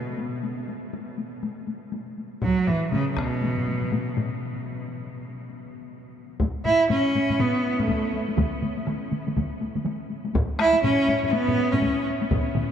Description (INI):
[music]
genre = japanese traditional, taiko drum ensemble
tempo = 121 BPM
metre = 4/4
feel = swing 60% on 16ths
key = B suspended pentatonic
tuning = A4 = 440 Hz
[part]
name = clear cello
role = melody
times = 0.0-12.1 s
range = B2 to E4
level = -24 LUFS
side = right 1 dB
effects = none
[part]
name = taiko ensemble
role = percussion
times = 0.1-12.7 s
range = none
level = -32 LUFS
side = left 4 dB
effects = none
[part]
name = taiko ensemble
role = percussion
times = 2.4-12.7 s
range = none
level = -31 LUFS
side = left 3 dB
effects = none
[part]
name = taiko ensemble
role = percussion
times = 2.4-3.3, 6.4-12.4 s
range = none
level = -30 LUFS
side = equal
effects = none
[part]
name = taiko ensemble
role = percussion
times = 8.4-12.7 s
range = none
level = -32 LUFS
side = right 4 dB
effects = none
[sound]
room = wet huge ambient reverb, RT60 7.6 s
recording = in a vast, echoing space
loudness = -22 LUFS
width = side -8 dB against mid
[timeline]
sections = 0.0-6.4 A section; 6.4-12.7 B section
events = break 4.4-6.4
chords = none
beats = | 0.42 0.92 1.42 1.92 | 2.42 2.92 3.42 3.92 | 4.42 4.92 5.41 5.91 | 6.40 6.90 7.39 7.89 | 8.38 8.88 9.37 9.86 | 10.35 10.84 11.33 11.82 | 12.31